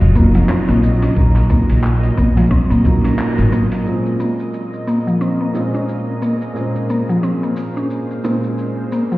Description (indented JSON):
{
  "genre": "organic downtempo",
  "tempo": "89 BPM",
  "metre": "4/4",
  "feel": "swing 58% on 16ths",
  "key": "Bb minor",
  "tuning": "A4 = 441 Hz",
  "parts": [
    { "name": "felt-muted upright piano", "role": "accompaniment", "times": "0.0-9.2 s", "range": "Bb2 to C5", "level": "-22 LUFS", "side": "right 2 dB", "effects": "sidechain pumping, low-pass filter, digital delay" },
    { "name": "bowed-like drone", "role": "sustained chords", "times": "0.0-9.2 s", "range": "Bb2 to Eb5", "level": "-23 LUFS", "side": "left 1 dB", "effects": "built-in reverb, sidechain pumping" },
    { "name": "mallet-like synth pluck", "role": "arpeggios", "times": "0.0-9.2 s", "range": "F3 to Db4", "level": "-19 LUFS", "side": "left 1 dB", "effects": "chorus, cassette tape, digital delay" },
    { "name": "upright bass", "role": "bass", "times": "0.0-3.5 s", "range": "F1 to Bb2", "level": "-15 LUFS", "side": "equal", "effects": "tube saturation, sidechain pumping" },
    { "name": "dusty soul sampler-style drum kit", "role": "drums", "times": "0.0-9.2 s", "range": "handclaps, hi-hat, shaker", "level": "-32 LUFS", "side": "equal", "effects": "none" },
    { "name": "electronic kick drum", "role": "drums", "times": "0.2-3.0 s", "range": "none", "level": "-16 LUFS", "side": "equal", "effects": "none" },
    { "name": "congas and bongos", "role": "percussion", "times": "0.3-3.8 s", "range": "none", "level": "-26 LUFS", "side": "right 1 dB", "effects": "none" },
    { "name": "drifting glass-harmonics texture", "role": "texture", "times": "4.6-9.2 s", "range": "Bb3 to Bb4", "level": "-31 LUFS", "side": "left 1 dB", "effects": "chorus, built-in reverb" }
  ],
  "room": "moderate lush hall reverb, RT60 1.9 s, digital ambience",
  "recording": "heard muffled through a wall, stone room reverb, EQ",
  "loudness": "-14 LUFS",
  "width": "side -18 dB against mid",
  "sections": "0.0-3.9 A section; 3.9-9.2 B section",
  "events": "break 3.2-3.9; band accent 3.2-3.5",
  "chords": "0.0 Ebmadd9; 3.9 Bbm7",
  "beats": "0.49 | 1.16 1.84 2.51 3.19 | 3.86 4.53 5.21 5.88 | 6.56 7.23 7.91 8.58"
}